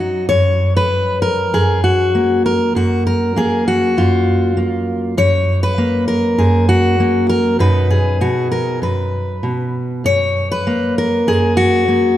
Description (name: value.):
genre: folk, solo fingerstyle acoustic guitar.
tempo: 98 BPM.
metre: 4/4.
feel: straight.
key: F# major.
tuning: A4 = 440 Hz.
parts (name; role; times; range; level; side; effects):
fingerpicked steel-string acoustic guitar; solo; 0.0-12.2 s; F#2 to C#5; -13 LUFS; equal; none.
room: wet concert hall reverb, RT60 1.8 s.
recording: dark, warm production.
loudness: -13 LUFS.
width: side -12 dB against mid.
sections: 0.3-12.2 A section.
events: none.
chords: 0.3 F#maj7; 7.6 B/F#; 10.1 F#.